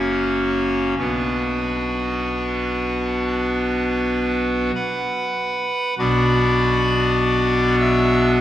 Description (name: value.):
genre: classical, chorale-style piece for pipe organ.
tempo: 48 BPM.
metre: 4/4.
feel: rubato.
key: B minor.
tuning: A4 = 440 Hz.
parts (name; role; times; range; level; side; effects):
pipe organ, clarinet reed; solo; 0.0-8.4 s; F#1 to E6; -18 LUFS; equal; none.
room: wet church reverb, RT60 3.2 s.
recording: vinyl crackle.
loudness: -18 LUFS.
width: side -12 dB against mid.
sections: 0.0-6.0 A section; 6.0-8.4 A section.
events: none.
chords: 0.0 F#; 1.0 Bm.